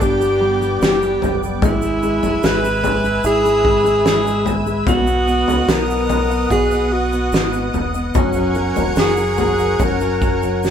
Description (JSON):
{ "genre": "pop ballad", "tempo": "73 BPM", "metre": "4/4", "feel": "straight", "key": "B major", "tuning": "A4 = 438 Hz", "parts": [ { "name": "clear alto saxophone", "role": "melody", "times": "0.0-10.7 s", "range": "C#4 to B4", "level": "-18 LUFS", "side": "equal", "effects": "none" }, { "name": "warm concert grand piano", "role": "accompaniment", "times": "0.0-10.7 s", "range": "F#3 to F#4", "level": "-22 LUFS", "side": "equal", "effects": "none" }, { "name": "lush unison pad", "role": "sustained chords", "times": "0.0-10.7 s", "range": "B3 to E6", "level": "-24 LUFS", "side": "equal", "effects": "chorus" }, { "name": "deep dub fingered electric bass", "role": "bass", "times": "0.0-10.7 s", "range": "E1 to C#2", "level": "-24 LUFS", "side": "equal", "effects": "none" }, { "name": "loose indie drum kit", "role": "drums", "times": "0.0-10.7 s", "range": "kick drum, snare drum, toms", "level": "-20 LUFS", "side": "left 1 dB", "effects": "none" }, { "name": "tube shaker", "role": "percussion", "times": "0.0-10.7 s", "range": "none", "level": "-38 LUFS", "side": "right 8 dB", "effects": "none" } ], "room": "moderate studio reverb, RT60 0.6 s", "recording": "band playing live in one room", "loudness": "-14 LUFS", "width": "side -8 dB against mid", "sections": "0.0-10.7 A section", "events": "none", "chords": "0.0 G; 1.6 E; 4.9 B; 8.1 F#add9" }